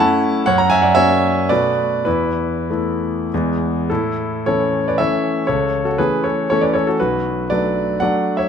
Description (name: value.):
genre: classical, romantic triple-time dance for piano with dotted rhythms.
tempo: 89-129 BPM.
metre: 3/4.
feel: rubato.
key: A major.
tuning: A4 = 440 Hz.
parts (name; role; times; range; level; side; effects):
clear concert grand piano; solo; 0.0-8.5 s; B1 to A#5; -15 LUFS; equal; none.
room: moderate recital hall reverb, RT60 1.7 s.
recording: close, detailed microphones.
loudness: -15 LUFS.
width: side -7 dB against mid.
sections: 0.0-3.9 A section; 3.9-8.5 B section.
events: none.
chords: 0.5 F#7; 1.5 Bm7; 2.1 Esus4; 3.3 E; 3.9 A; 5.5 A/C#; 7.0 Bm7.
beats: 0.00 | 0.48 0.96 1.50 | 2.06 2.70 3.32 | 3.90 4.45 4.99 | 5.47 5.98 6.50 | 6.99 7.50 8.00 | 8.49.